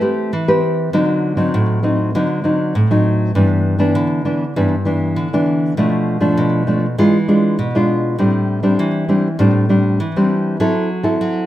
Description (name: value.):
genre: samba.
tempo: 100 BPM.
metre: 4/4.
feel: straight.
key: unclear.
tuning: A4 = 435 Hz.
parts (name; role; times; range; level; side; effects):
nylon-string guitar; solo; 0.0-11.5 s; G2 to B4; -14 LUFS; equal; slapback echo.
room: moderate studio reverb, RT60 0.7 s.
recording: none.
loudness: -14 LUFS.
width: side -13 dB against mid.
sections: 0.0-11.5 A section.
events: none.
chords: 0.0 Am9; 0.9 D7b9; 3.4 G6; 5.8 Bm7b5; 7.0 E7b9; 8.2 Am7; 10.6 F#m7b5.